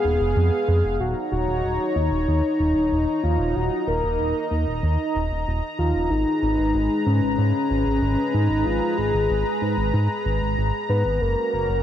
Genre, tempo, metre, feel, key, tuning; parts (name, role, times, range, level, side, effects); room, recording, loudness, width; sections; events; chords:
synthwave; 94 BPM; 4/4; straight; Eb minor; A4 = 440 Hz
soft octave-layered synth lead; melody; 0.0-11.8 s; Db4 to Cb5; -24 LUFS; left 1 dB; chorus, tape echo
warm analog pad; sustained chords; 0.0-11.8 s; Ab3 to Bb5; -26 LUFS; equal; chorus
chorused synth bass; bass; 0.0-11.8 s; Eb1 to Ab2; -23 LUFS; equal
moderate lush hall reverb, RT60 2.2 s; big arena sound; -20 LUFS; side -10 dB against mid
1.0-11.8 A section
0.0 Fdim; 1.0 Ebm7; 6.1 Abmadd9; 11.2 Gb